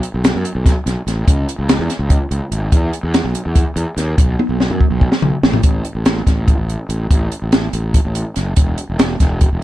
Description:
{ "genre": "math rock and midwest emo", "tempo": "288 BPM (eighths)", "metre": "7/8", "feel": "straight", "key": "unclear", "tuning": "A4 = 442 Hz", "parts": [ { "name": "compact cocktail drum kit", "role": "drums", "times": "0.0-9.5 s", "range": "hi-hat, kick drum, snare drum, toms", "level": "-14 LUFS", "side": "equal", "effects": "none" }, { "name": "fuzz fingered electric bass", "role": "bass", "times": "0.1-9.6 s", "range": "E1 to F#2", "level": "-18 LUFS", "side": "equal", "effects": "overdrive" } ], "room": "little or no reverb", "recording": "dark, warm production, lossy compression artefacts", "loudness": "-14 LUFS", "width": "side -15 dB against mid", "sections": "0.0-5.6 A section; 5.6-9.6 B section", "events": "drum fill 4.4-5.6", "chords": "none" }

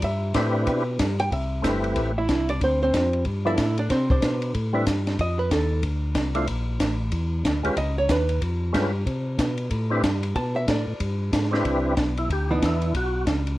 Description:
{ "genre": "soul jazz organ trio", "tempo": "186 BPM", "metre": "4/4", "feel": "swing 62% on 8ths", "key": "A minor", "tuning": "A4 = 441 Hz", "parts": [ { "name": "archtop guitar, miked and amplified", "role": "accompaniment", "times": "0.0-12.9 s", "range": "E3 to A5", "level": "-25 LUFS", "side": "right 1 dB", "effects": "none" }, { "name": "tonewheel organ", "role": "bass", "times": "0.0-13.6 s", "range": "G1 to C3", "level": "-25 LUFS", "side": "equal", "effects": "overdrive, chorus vibrato, slow rotary speaker" }, { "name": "compact cocktail drum kit", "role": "drums", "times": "0.0-13.5 s", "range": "hi-hat, kick drum, ride cymbal, snare drum", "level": "-27 LUFS", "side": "equal", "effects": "none" }, { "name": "percussive tonewheel organ", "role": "melody", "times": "0.3-13.3 s", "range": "F3 to C5", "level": "-26 LUFS", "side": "equal", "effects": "slow rotary speaker, overdrive, chorus vibrato, plate reverb" } ], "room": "light reverb", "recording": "worn, warbling old tape, cassette tape, warbly pitch drift", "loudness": "-21 LUFS", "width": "side -16 dB against mid", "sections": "0.0-1.3 A section; 1.3-11.6 A section; 11.6-13.6 A section", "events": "hollow-body jazz guitar solo 0.0-11.6; tonewheel organ solo 11.6-13.6", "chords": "0.0 Cmaj9; 1.3 Am7; 2.6 Dm7; 3.3 G13; 3.9 Cmaj7sus2; 5.2 F7; 6.5 Bbmaj7#11; 7.8 C#7#11; 9.1 Cmaj7(no3); 10.4 Asus24; 11.0 G; 11.6 Cmaj9; 12.9 B5" }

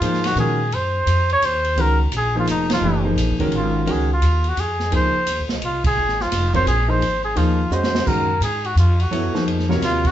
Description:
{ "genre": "modal jazz", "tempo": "171 BPM", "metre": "3/4", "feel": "swing 63% on 8ths", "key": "unclear", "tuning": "A4 = 440 Hz", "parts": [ { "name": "trumpet with cup mute", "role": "melody", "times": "0.0-10.1 s", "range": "Eb4 to Db5", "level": "-21 LUFS", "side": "equal", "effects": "none" }, { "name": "warm concert grand piano", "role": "accompaniment", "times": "0.0-10.1 s", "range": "C3 to Eb5", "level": "-22 LUFS", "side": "equal", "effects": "none" }, { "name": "upright bass", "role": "bass", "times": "0.0-10.1 s", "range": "F1 to Bb2", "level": "-21 LUFS", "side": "equal", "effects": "none" }, { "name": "open jazz drum kit", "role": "drums", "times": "0.0-10.1 s", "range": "crash cymbal, hi-hat, kick drum, ride cymbal, snare drum", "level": "-27 LUFS", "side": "right 1 dB", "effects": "none" } ], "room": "moderate studio reverb, RT60 0.6 s", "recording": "band playing live in one room, nothing above 7.9 kHz", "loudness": "-17 LUFS", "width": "side -11 dB against mid", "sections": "0.0-10.1 A section", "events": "band accent 2.6, 5.8; drum fill 7.7-8.1", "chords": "0.0 Gbmaj9; 3.9 Dbmaj9; 8.1 Gbmaj9" }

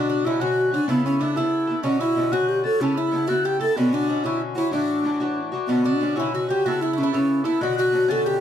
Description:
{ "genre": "celtic folk, Celtic jig", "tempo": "125 BPM (dotted quarters)", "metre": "6/8", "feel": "straight", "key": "unclear", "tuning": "A4 = 440 Hz", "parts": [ { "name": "breathy mellow bass ocarina", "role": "melody", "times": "0.0-8.4 s", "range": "B3 to A4", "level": "-21 LUFS", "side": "equal", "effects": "none" }, { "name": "Irish bouzouki", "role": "second line", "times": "0.0-8.4 s", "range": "B3 to A4", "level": "-31 LUFS", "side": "right 9 dB", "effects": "none" }, { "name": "concert flute", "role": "second line", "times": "0.0-8.4 s", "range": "B5 to A6", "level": "-31 LUFS", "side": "left 3 dB", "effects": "none" }, { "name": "Irish bouzouki", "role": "accompaniment", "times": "0.0-8.4 s", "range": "A2 to A4", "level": "-26 LUFS", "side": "left 3 dB", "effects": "none" } ], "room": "moderate studio reverb, RT60 0.5 s", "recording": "dark, warm production", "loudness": "-20 LUFS", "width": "side -9 dB against mid", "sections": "0.0-5.7 A section; 5.7-8.4 A section", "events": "none", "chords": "0.0 Bmadd9; 0.9 Aadd9; 1.9 Bmadd9; 2.8 Aadd9; 3.8 Bmadd9; 4.7 Dadd9; 5.7 Bmadd9; 6.7 Aadd9; 7.6 Bmadd9" }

